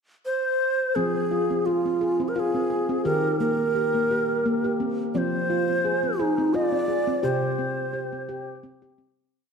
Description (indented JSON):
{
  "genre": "world meditative, meditative tuned percussion",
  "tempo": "86 BPM",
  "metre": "3/4",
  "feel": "swing 55% on 16ths",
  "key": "F dorian",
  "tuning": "A4 = 440 Hz",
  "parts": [
    { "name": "breathy low Native American-style wooden flute", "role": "melody", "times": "0.3-8.6 s", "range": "Eb4 to D5", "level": "-24 LUFS", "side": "right 1 dB", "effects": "tape echo" },
    { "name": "handpan", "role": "arpeggios", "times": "1.0-9.3 s", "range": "C3 to Ab4", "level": "-25 LUFS", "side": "left 1 dB", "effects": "tape echo" }
  ],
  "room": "wet scoring stage reverb, RT60 1.9 s",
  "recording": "dark, warm production",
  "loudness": "-22 LUFS",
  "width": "side -6 dB against mid",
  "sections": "0.0-1.0 pickup bar; 1.0-9.3 A section",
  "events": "fade-out 7.2-9.3",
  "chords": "0.0 N.C.; 1.0 Fm; 3.1 Eb; 5.2 Fm; 7.2 C5"
}